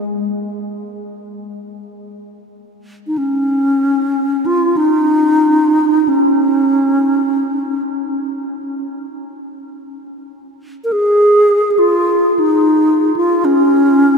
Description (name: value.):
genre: world meditative, free-time meditation music.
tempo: free time.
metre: none.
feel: none.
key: Db major pentatonic.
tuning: A4 = 437 Hz.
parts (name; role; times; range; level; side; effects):
bright bass flute; solo; 0.0-14.2 s; Ab3 to Bb4; -13 LUFS; equal; analog delay.
room: wet huge ambient reverb, RT60 8.0 s.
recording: dreamy mix soaked in reverb.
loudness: -12 LUFS.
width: side -5 dB against mid.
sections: 0.0-14.2 A section.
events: none.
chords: none.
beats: free time.